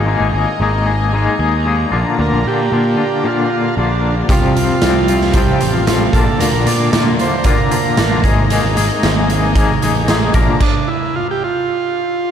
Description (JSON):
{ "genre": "psychedelic rock", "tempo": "114 BPM", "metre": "4/4", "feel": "straight", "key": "unclear", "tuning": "A4 = 441 Hz", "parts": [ { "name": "warm chamber string section", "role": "sustained chords", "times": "0.0-10.6 s", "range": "C5 to Bb5", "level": "-27 LUFS", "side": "right 2 dB", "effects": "none" }, { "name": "twangy electric guitar", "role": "riff", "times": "0.0-10.6 s", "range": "Bb2 to Bb4", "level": "-18 LUFS", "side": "left 5 dB", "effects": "tremolo" }, { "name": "fuzz picked electric bass", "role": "bass", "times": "0.0-10.5 s", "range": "Ab1 to Bb2", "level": "-17 LUFS", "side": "equal", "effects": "overdrive" }, { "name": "combo organ", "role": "melody", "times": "2.2-12.3 s", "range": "D4 to D5", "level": "-20 LUFS", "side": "right 4 dB", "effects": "spring reverb, analog delay" }, { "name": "raw garage drum kit", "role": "drums", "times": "4.3-10.7 s", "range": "crash cymbal, hi-hat, kick drum, snare drum", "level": "-16 LUFS", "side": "right 1 dB", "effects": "none" } ], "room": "moderate huge ambient reverb, RT60 4.9 s", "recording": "dreamy mix soaked in reverb", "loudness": "-12 LUFS", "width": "side -8 dB against mid", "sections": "0.0-12.3 A section", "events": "stop 10.6-12.3", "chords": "0.0 Absus2; 1.9 Bb; 4.3 Csus4; 6.1 Bb; 8.3 Absus2; 10.4 Bb; 11.7 N.C." }